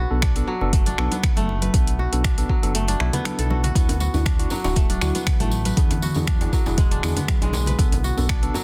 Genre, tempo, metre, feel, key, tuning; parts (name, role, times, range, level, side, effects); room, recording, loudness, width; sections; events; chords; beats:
afro house; 119 BPM; 4/4; swing 53% on 16ths; B dorian; A4 = 440 Hz
kora; arpeggios; 0.0-8.6 s; F#3 to B4; -31 LUFS; equal; sidechain pumping, digital delay
smooth synth bass; bass; 0.0-8.5 s; D1 to E2; -26 LUFS; equal; sidechain pumping
tine electric piano; stabs; 0.1-8.6 s; B3 to A4; -33 LUFS; equal; subtle chorus, sidechain pumping, low-pass filter, digital delay
deep house drum kit; drums; 0.2-8.5 s; finger snaps, hi-hat; -31 LUFS; equal; overdrive, soft clipping on snare
electronic kick drum; drums; 0.2-8.4 s; -23 LUFS; equal; overdrive
congas; percussion; 0.2-8.4 s; -33 LUFS; equal
ethereal airy pad; sustained chords; 5.1-8.6 s; B2 to E4; -35 LUFS; equal
tambourine; percussion; 3.8-8.6 s; -38 LUFS; equal
djembe; percussion; 3.9-8.6 s; -33 LUFS; equal
small room ambience; dense, heavily limited modern master; -21 LUFS; mono
0.0-8.6 A section
kick drops out 2.7-3.8
0.0 Bm7; 3.8 Dadd9; 5.8 E7; 7.8 Bm7
0.23 0.73 1.23 | 1.74 2.24 2.75 3.25 | 3.75 4.26 4.76 5.27 | 5.77 6.28 6.78 7.28 | 7.79 8.29